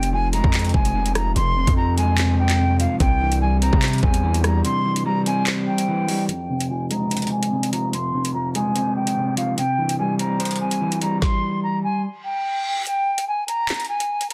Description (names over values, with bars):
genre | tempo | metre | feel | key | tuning
hip hop, drill | 146 BPM | 4/4 | half-time | F harmonic minor | A4 = 440 Hz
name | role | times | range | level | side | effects
concert flute | melody | 0.0-14.3 s | F5 to C6 | -27 LUFS | equal | low-pass filter
electric guitar at the edge of break-up | accompaniment | 0.0-12.0 s | F2 to C5 | -26 LUFS | equal | low-pass filter
distorted 808-style bass | bass | 0.0-4.6 s | F1 to C3 | -23 LUFS | equal | distortion
drill drum kit | drums | 0.0-14.3 s | handclaps, hi-hat, kick drum, rim click, snare drum | -25 LUFS | equal | none
reverse cymbal | sound effects | 12.2-12.9 s | none | -34 LUFS | equal | none
room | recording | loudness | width
little or no reverb | dense, heavily limited modern master | -21 LUFS | mono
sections
0.0-6.3 A section; 6.3-12.9 B section; 12.9-14.3 C section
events
break 4.6-6.3; filter sweep 6.3-12.9; reverse cymbal 12.2-12.9; kick muted 12.9-14.3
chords
0.0 Fm; 3.0 C; 6.3 Fm; 9.6 C; 12.9 N.C.